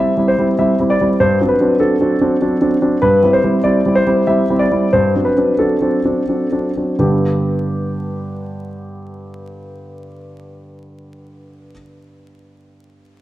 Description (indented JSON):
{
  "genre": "classical-period piano sonatina",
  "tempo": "82-100 BPM",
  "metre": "3/4",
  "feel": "rubato",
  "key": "G major",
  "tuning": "A4 = 440 Hz",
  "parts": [
    { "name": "warm concert grand piano", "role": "solo", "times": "0.0-13.2 s", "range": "G2 to E5", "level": "-14 LUFS", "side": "equal", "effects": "none" }
  ],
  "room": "wet recital hall reverb, RT60 1.7 s",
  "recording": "vinyl crackle",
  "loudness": "-13 LUFS",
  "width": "side -15 dB against mid",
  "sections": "0.0-7.0 A section; 7.0-11.3 B section",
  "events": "slowing down 2.1-7.0",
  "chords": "0.0 C/G; 1.2 D7/G; 3.0 C/G; 4.9 D7/G; 7.0 G"
}